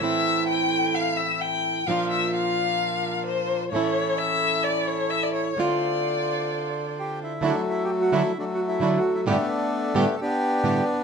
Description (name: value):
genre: tango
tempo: 130 BPM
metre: 4/4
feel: rubato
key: D minor, D major from 7.4 s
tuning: A4 = 440 Hz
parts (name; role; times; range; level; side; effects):
- warm violin; second line; 0.0-7.0 s; C5 to G5; -24 LUFS; left 5 dB; none
- flamenco guitar; accompaniment; 0.0-10.8 s; G2 to G4; -26 LUFS; right 4 dB; none
- bandoneon; stabs; 0.0-10.8 s; A3 to C5; -32 LUFS; right 2 dB; none
- bandoneon; melody; 7.0-11.0 s; F#3 to A4; -23 LUFS; equal; none
room: moderate studio reverb, RT60 0.7 s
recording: minimal, uncompressed stereo recording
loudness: -22 LUFS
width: side -6 dB against mid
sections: 0.0-7.4 A section; 7.4-11.0 B section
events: violin solo 0.0-7.4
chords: 0.0 Am; 1.9 Bb; 3.7 A; 5.6 Dm7; 7.4 Dadd9; 9.3 Gadd9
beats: | 0.02 0.49 0.95 1.42 | 1.88 2.35 2.81 3.27 | 3.73 4.19 4.65 5.11 | 5.57 6.03 6.49 6.96 | 7.42 7.89 8.35 8.81 | 9.27 9.73 10.19 10.64